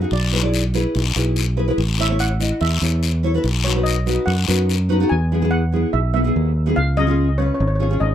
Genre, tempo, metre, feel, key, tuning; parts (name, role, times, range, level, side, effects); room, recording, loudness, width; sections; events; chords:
calypso; 144 BPM; 4/4; straight; E major; A4 = 438 Hz
steel pan; melody; 0.0-8.1 s; C#5 to G#5; -26 LUFS; right 1 dB; digital delay
nylon-string guitar; accompaniment; 0.0-8.1 s; B3 to D#5; -22 LUFS; left 1 dB; double-tracked left and right
fingered electric bass; bass; 0.0-8.1 s; G#1 to F#2; -19 LUFS; equal
guiro; percussion; 0.1-4.8 s; -26 LUFS; left 8 dB
little or no reverb; rough home demo mix; -16 LUFS; side -10 dB against mid
0.0-5.1 A section; 5.1-8.1 B section
steel pan solo 0.0-5.1
0.1 E7/B; 1.8 A; 3.4 B; 5.1 E; 6.8 C#7